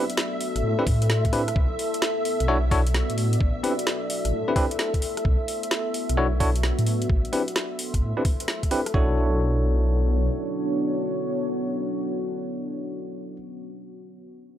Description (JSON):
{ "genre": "UK garage, two-step garage", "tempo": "130 BPM", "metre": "4/4", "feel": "swing 66% on 16ths", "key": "B minor", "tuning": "A4 = 441 Hz", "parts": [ { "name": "soft string machine", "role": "sustained chords", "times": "0.0-9.0 s", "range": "E5", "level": "-37 LUFS", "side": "right 1 dB", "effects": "ensemble chorus, sidechain pumping" }, { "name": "bell-like tine electric piano", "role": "stabs", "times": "0.0-13.4 s", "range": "C4 to C#5", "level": "-28 LUFS", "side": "equal", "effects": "medium stereo tremolo, low-pass filter, tape echo" }, { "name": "deep dark ambient pad", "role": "texture", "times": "0.0-13.4 s", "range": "B3 to C6", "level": "-29 LUFS", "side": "left 1 dB", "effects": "chorus, built-in reverb, sidechain pumping" }, { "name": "garage drum kit", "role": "drums", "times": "0.1-8.9 s", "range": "hi-hat, rim click, snare drum", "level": "-29 LUFS", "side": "equal", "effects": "none" }, { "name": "dark detuned saw bass", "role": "bass", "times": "0.6-10.3 s", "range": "A1 to A2", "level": "-23 LUFS", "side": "equal", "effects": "none" }, { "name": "electronic kick drum", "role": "drums", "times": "0.9-9.1 s", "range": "none", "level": "-24 LUFS", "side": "equal", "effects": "none" } ], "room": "digital ambience", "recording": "dry, gritty hardware recording", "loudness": "-22 LUFS", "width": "side -11 dB against mid", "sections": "0.0-8.9 A section; 8.9-12.6 B section", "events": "filter sweep on detuned saw bass 0.0-8.9", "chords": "0.0 Amadd9; 1.6 Bm11; 3.2 Amadd9; 5.3 Bm11; 6.9 Amadd9; 8.9 Bm11", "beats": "0.17 0.64 1.10 | 1.56 2.02 2.48 2.94 | 3.40 3.87 4.33 4.79 | 5.25 5.71 6.17 6.64 | 7.10 7.56 8.02 8.48 | 8.94 9.40 9.87 10.33 | 10.79 11.25 11.71 12.17" }